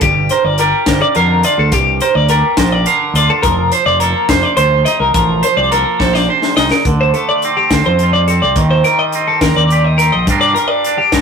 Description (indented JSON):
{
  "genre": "math rock and midwest emo",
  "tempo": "70 BPM (dotted quarters)",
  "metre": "6/8",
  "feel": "straight",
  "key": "G minor",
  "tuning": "A4 = 444 Hz",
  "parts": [
    { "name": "twangy electric guitar", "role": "accompaniment", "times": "0.0-11.2 s", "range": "G2 to F5", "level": "-18 LUFS", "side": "right 6 dB", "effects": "none" },
    { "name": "twelve-string electric guitar", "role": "arpeggios", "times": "0.0-11.2 s", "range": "G4 to Eb5", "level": "-14 LUFS", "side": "left 1 dB", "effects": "none" },
    { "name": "growling fingered electric bass", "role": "bass", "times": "0.0-11.2 s", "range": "F1 to G2", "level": "-16 LUFS", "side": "equal", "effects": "overdrive" },
    { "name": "crisp fusion drum kit", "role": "drums", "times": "0.0-11.2 s", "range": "hi-hat, kick drum, snare drum", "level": "-18 LUFS", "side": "left 2 dB", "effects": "none" }
  ],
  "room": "moderate studio reverb, RT60 0.6 s",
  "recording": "rough rehearsal-room recording, warm saturation",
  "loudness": "-10 LUFS",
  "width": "side -6 dB against mid",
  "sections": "0.0-6.9 A section; 6.9-11.2 B section",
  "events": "drum fill 6.0-6.9",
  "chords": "0.0 Gm7; 3.4 F7sus4; 6.9 Dm7; 8.6 Cm7/Eb; 10.3 Gm7",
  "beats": "| 0.02 0.87 | 1.73 2.58 | 3.43 4.29 | 5.14 6.00 | 6.85 7.71 | 8.56 9.42 | 10.27 11.13"
}